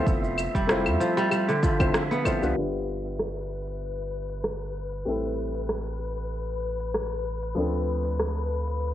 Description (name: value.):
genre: organic downtempo.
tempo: 96 BPM.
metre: 4/4.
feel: swing 54% on 16ths.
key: G mixolydian.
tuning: A4 = 441 Hz.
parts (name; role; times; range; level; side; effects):
felt-muted upright piano; accompaniment; 0.0-8.9 s; F3 to C5; -30 LUFS; left 2 dB; sidechain pumping, low-pass filter, cassette tape, tape echo.
kora; arpeggios; 0.0-4.0 s; D3 to B3; -27 LUFS; equal; cassette tape, tape echo.
wind-like tuned noise texture; texture; 0.0-8.9 s; B4 to E5; -34 LUFS; left 1 dB; built-in reverb, cassette tape.
warm sub bass; bass; 0.1-8.9 s; F1 to F2; -32 LUFS; equal; none.
electronic kick drum; drums; 0.1-2.4 s; none; -26 LUFS; equal; cassette tape.
organic electronic drum kit; drums; 0.1-8.9 s; cabasa, claves, hi-hat, rim click; -30 LUFS; equal; cassette tape.
room: light reverb.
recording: home recording on cassette, low-pass filter.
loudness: -25 LUFS.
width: side -12 dB against mid.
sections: 0.0-2.6 A section; 2.6-8.9 B section.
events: filter sweep on felt piano 2.6-8.9; filter sweep 2.6-8.9.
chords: 0.1 Fmaj7; 2.6 G7; 5.1 Am7; 7.6 Dm7.